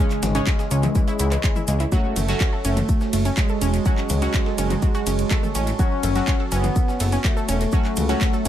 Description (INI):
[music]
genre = melodic techno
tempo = 124 BPM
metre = 4/4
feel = straight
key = F# minor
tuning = A4 = 440 Hz
[part]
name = analog synth brass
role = melody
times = 0.0-8.5 s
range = G#3 to C#4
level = -26 LUFS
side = equal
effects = chorus, sidechain pumping, dub echo
[part]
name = dark analog pad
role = sustained chords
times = 0.1-8.5 s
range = E3 to C#6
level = -34 LUFS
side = right 3 dB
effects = chorus, phaser, sidechain pumping
[part]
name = wide unison pluck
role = arpeggios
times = 0.0-8.5 s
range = E3 to A5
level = -30 LUFS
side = right 1 dB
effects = cassette tape, sidechain pumping, analog delay
[part]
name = synth brass stab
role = stabs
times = 0.0-8.5 s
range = C#3 to F#4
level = -30 LUFS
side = right 1 dB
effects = chorus, phaser, sidechain pumping, analog delay
[part]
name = breakbeat sampler-style drum kit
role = drums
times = 0.1-8.5 s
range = hi-hat, shaker, snare drum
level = -39 LUFS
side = right 1 dB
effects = none
[part]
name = house drum kit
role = drums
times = 0.1-8.5 s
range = handclaps, hi-hat, ride cymbal, toms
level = -30 LUFS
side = left 1 dB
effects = analog delay
[part]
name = cabasa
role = percussion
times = 0.1-8.5 s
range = none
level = -37 LUFS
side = left 5 dB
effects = none
[part]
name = fat analog bass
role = bass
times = 0.2-8.5 s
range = E1 to C#2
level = -22 LUFS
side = equal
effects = sidechain pumping
[part]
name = electronic kick drum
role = drums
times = 0.5-8.3 s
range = none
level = -21 LUFS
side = equal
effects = none
[sound]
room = digital ambience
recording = echo-heavy mix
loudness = -18 LUFS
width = side -11 dB against mid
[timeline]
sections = 0.0-8.5 A section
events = none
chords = 0.0 C#m; 1.9 F#m